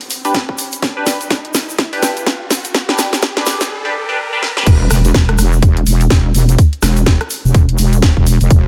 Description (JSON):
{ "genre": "bass house", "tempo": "125 BPM", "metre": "4/4", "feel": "swing 60% on 16ths", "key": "unclear", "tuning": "A4 = 441 Hz", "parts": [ { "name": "garage drum kit", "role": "drums", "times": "0.0-8.6 s", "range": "crash cymbal, hi-hat, rim click, snare drum", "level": "-20 LUFS", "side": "equal", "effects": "none" }, { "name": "riser and impact", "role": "sound effects", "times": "0.0-6.6 s", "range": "none", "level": "-29 LUFS", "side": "equal", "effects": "none" }, { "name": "tube shaker", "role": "percussion", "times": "0.1-8.6 s", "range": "none", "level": "-27 LUFS", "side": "equal", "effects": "none" }, { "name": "band-passed chord stab", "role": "stabs", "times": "0.2-4.6 s", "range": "D4 to B4", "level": "-22 LUFS", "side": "equal", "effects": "phaser, sidechain pumping, tape echo" }, { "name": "electronic kick drum", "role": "drums", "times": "0.3-8.6 s", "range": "none", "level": "-13 LUFS", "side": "equal", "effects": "high-pass filter on kick" }, { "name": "wobble bass", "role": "bass", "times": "4.7-8.7 s", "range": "E1", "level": "-14 LUFS", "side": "equal", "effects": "chorus, tube saturation, sidechain pumping" } ], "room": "light reverb", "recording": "high-pass filter", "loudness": "-14 LUFS", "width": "mono", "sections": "0.0-4.7 A section; 4.7-8.7 B section", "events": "build-up 0.0-4.7; drum fill 0.0-3.7, 4.4; riser 0.0-4.7; filter sweep on synth stab 0.0-4.7; drop 4.7-8.7; impact 4.7-6.6", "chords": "0.0 G/D; 4.7 N.C.", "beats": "0.34 | 0.82 1.30 1.78 2.27 | 2.75 3.23 3.71 4.18 | 4.67 5.14 5.62 6.11 | 6.58 7.07 7.54 8.03 | 8.51" }